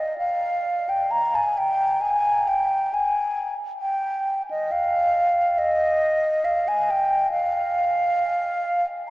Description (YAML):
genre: classical, free, expressive piece for unaccompanied flute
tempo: 68 BPM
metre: 4/4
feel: rubato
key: unclear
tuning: A4 = 440 Hz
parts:
  - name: mellow hollow silver concert flute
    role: solo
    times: 0.0-8.8 s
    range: Eb5 to Bb5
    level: -20 LUFS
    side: equal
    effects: none
room: wet cathedral reverb, RT60 6.8 s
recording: in a vast, echoing space, small speaker sound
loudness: -20 LUFS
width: side -18 dB against mid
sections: 0.0-9.1 A section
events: none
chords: none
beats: | 0.18 1.08 1.98 2.90 | 3.78 4.68 5.55 6.43 | 7.31 8.18